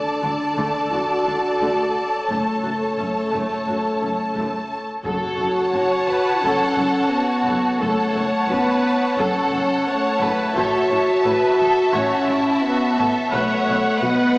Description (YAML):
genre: cinematic, epic orchestral film score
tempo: 87 BPM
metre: 4/4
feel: straight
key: F# minor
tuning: A4 = 440 Hz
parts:
  - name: warm symphonic violin section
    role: second line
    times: 0.0-14.4 s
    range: C#5 to A5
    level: -23 LUFS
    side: equal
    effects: none
  - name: rich symphonic viola section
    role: accompaniment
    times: 0.0-14.4 s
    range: A3 to F#5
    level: -26 LUFS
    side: equal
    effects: none
  - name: mellow French horn section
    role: sustained chords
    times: 0.0-14.4 s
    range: A3 to F#4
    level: -21 LUFS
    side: equal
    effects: none
  - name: rich symphonic double bass section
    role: bass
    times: 0.2-14.1 s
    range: F#1 to D2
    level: -34 LUFS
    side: equal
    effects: none
  - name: warm symphonic cello section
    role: bass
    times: 0.2-14.1 s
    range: F#2 to D3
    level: -32 LUFS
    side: equal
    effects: none
  - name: taiko ensemble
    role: drums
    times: 5.0-6.4, 10.6-11.9 s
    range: none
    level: -42 LUFS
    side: equal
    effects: none
  - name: timpani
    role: percussion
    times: 5.0-6.0 s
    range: F#2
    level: -42 LUFS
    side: equal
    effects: none
  - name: rich symphonic violin section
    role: melody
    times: 5.1-14.4 s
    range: E4 to C#5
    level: -24 LUFS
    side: equal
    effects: none
room: wet scoring stage reverb, RT60 1.6 s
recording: heard from further back in the room, small speaker sound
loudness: -17 LUFS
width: side -23 dB against mid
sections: 0.0-5.0 A section; 5.0-14.4 B section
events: none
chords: 0.0 D; 2.3 F#m; 10.6 A6; 13.3 B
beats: 0.22 0.91 1.59 | 2.29 2.98 3.66 4.35 | 5.04 5.73 6.42 7.11 | 7.80 8.49 9.18 9.87 | 10.56 11.25 11.94 12.63 | 13.32 14.01